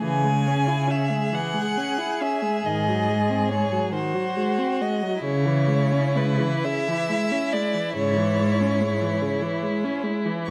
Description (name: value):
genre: classical, slow romantic movement for string quartet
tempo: 41-48 BPM (dotted quarters)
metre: 12/8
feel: rubato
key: unclear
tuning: A4 = 444 Hz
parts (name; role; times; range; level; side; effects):
- rich violin; melody; 0.0-10.5 s; B4 to G#5; -30 LUFS; equal; none
- warm violin; second line; 0.0-10.4 s; E4 to G#4; -31 LUFS; equal; none
- rich viola; accompaniment; 0.0-10.5 s; C#3 to E4; -29 LUFS; equal; none
- rich cello; bass; 0.0-10.5 s; G#2 to C#3; -27 LUFS; equal; none
room: moderate recital hall reverb, RT60 1.4 s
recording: close, detailed microphones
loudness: -24 LUFS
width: mono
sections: 0.0-10.5 A section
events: none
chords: 0.0 C#m; 2.7 G#7; 5.2 C#m